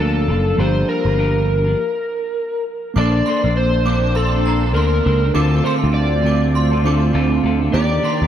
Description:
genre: indie pop, bedroom pop.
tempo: 101 BPM.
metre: 4/4.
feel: swing 60% on 16ths.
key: Bb major.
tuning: A4 = 440 Hz.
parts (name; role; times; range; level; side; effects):
overdriven slide guitar; melody; 0.0-8.3 s; A4 to D5; -21 LUFS; left 1 dB; analog chorus, diffuse ambient delay.
clean electric guitar; accompaniment; 0.0-8.3 s; D3 to C5; -22 LUFS; equal; wide subtle chorus, warbly pitch drift.
warbly lo-fi synth keys; accompaniment; 0.0-8.3 s; F3 to A5; -25 LUFS; right 3 dB; chorus, cassette tape.
picked electric bass; bass; 0.0-8.3 s; Gb1 to Eb2; -17 LUFS; equal; none.
synth chime; second line; 3.0-8.3 s; Bb5 to D6; -27 LUFS; right 4 dB; ensemble chorus, tremolo, diffuse ambient delay.
phased analog pad; sustained chords; 3.0-8.3 s; D3 to D5; -27 LUFS; equal; phaser, chorus.
room: moderate plate reverb, RT60 3.8 s.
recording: dreamy mix soaked in reverb.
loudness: -15 LUFS.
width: side -10 dB against mid.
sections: 0.0-3.0 A section; 3.0-8.3 B section.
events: stop 1.8-3.0.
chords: 0.0 Bbmaj7; 0.6 Gm7; 3.0 Bbmaj9; 5.4 Dm7; 7.7 Ebmaj7.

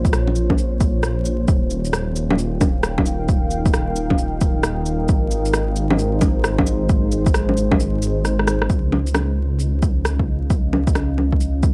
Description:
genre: future garage.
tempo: 133 BPM.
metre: 4/4.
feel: swing 64% on 16ths.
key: unclear.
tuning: A4 = 440 Hz.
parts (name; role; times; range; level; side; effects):
deep dark ambient pad; sustained chords; 0.0-11.7 s; Ab3 to G5; -28 LUFS; equal; chorus, built-in reverb, sidechain pumping.
dark detuned saw bass; bass; 0.0-11.7 s; Eb1 to Db2; -24 LUFS; equal; sidechain pumping.
electronic kick drum; drums; 0.0-11.7 s; none; -21 LUFS; equal; overdrive.
electronic shaker, rim click, bongos and cabasa; drums; 0.1-11.7 s; none; -24 LUFS; equal; overdrive.
room: digital ambience.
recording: dry, gritty hardware recording, vinyl crackle.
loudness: -19 LUFS.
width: mono.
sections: 0.0-8.7 A section; 8.7-11.7 B section.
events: break 7.8-8.7; drum fill 8.2-8.7.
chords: 0.0 Bbm; 1.5 Ebadd9; 5.1 Ab; 8.7 Dbmaj7.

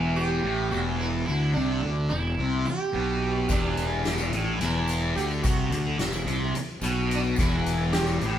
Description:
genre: psychedelic rock.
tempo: 216 BPM (eighths).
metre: 7/8.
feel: straight.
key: E minor.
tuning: A4 = 440 Hz.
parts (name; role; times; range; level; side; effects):
sitar; melody; 0.0-8.4 s; D4 to G4; -32 LUFS; right 3 dB; none.
thick fuzz guitar; riff; 0.0-8.4 s; E2 to D3; -27 LUFS; left 1 dB; distortion, phaser.
fuzz fingered electric bass; bass; 0.0-8.4 s; E1 to D2; -29 LUFS; equal; overdrive.
soft-mallet drum kit; drums; 3.5-8.3 s; hi-hat, kick drum, snare drum; -30 LUFS; equal; none.
tambourine; percussion; 3.5-8.2 s; none; -44 LUFS; left 5 dB; none.
room: moderate large studio reverb, RT60 1.1 s.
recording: band playing live in one room.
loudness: -23 LUFS.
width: side -10 dB against mid.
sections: 0.0-8.4 A section.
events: none.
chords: 0.0 E5.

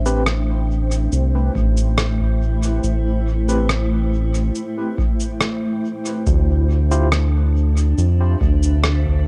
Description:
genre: ambient dub.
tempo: 70 BPM.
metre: 4/4.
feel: straight.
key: A minor.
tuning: A4 = 441 Hz.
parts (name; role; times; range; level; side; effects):
granular cloud pad; sustained chords; 0.0-9.3 s; A3 to G5; -27 LUFS; equal; built-in reverb.
round analog bass; bass; 0.0-9.3 s; A1 to F2; -19 LUFS; equal; tube saturation.
barky tine electric piano; stabs; 0.1-7.1 s; C4 to C5; -29 LUFS; equal; overdrive, fast tremolo, dub echo.
electronic cabasa and rim click; drums; 0.1-9.0 s; none; -26 LUFS; equal; small room ambience, cassette tape, dub echo.
electronic kick drum; drums; 1.6-9.2 s; none; -23 LUFS; equal; overdrive, small room ambience, cassette tape.
room: little or no reverb.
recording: home recording on cassette.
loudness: -19 LUFS.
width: mono.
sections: 0.0-9.3 A section.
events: none.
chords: 0.0 Am7; 6.3 Dm9.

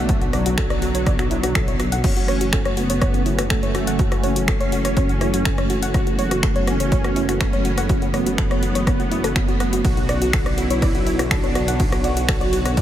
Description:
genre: melodic techno.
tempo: 123 BPM.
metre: 4/4.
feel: straight.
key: F# minor.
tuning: A4 = 439 Hz.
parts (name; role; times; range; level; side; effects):
soft supersaw; melody; 0.0-12.8 s; F#3 to F#4; -26 LUFS; right 1 dB; ensemble chorus, sidechain pumping, analog delay.
sweeping resonant pad; sustained chords; 0.0-12.8 s; D3 to C#5; -27 LUFS; equal; chorus, vintage 12-bit sampler grit, sidechain pumping.
soft round pluck; arpeggios; 0.0-12.8 s; E4 to F#5; -27 LUFS; equal; chorus, sidechain pumping, analog delay.
dark detuned saw bass; bass; 0.0-12.8 s; F#1 to B1; -25 LUFS; equal; sidechain pumping.
bowed-like drone; drone; 0.0-12.8 s; F#2; -34 LUFS; equal; none.
electronic kick drum; drums; 0.1-12.8 s; none; -22 LUFS; equal; none.
punchy analog drum machine; drums; 0.1-12.8 s; crash cymbal, finger snaps, hi-hat, ride cymbal, rim click; -27 LUFS; left 1 dB; overdrive.
room: light reverb.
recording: none.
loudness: -17 LUFS.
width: side -11 dB against mid.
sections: 0.0-12.8 A section.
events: none.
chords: 0.0 Bmadd9; 2.0 F#m7; 9.8 Bmadd9.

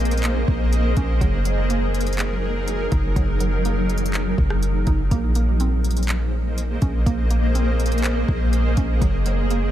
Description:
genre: hip hop, atmospheric cloud-rap.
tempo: 123 BPM.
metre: 4/4.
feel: half-time.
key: Bb minor.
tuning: A4 = 439 Hz.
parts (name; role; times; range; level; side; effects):
granular cloud pad; sustained chords; 0.0-9.7 s; Gb3 to Eb5; -25 LUFS; equal; built-in reverb, sidechain pumping.
mallet-like synth pluck; arpeggios; 0.0-9.7 s; Gb3 to Eb4; -32 LUFS; right 6 dB; chorus, digital delay.
warm 808-style bass; bass; 0.0-9.7 s; Gb1 to Bb1; -21 LUFS; equal; none.
smooth R&B drum kit; drums; 0.1-9.6 s; handclaps, hi-hat, kick drum, rim click; -25 LUFS; equal; none.
room: digital ambience.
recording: none.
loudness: -18 LUFS.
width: side -12 dB against mid.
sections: 0.0-9.7 A section.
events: none.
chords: 0.0 Bbm11; 1.2 Gb69; 5.1 Bbm11; 9.0 Gb69.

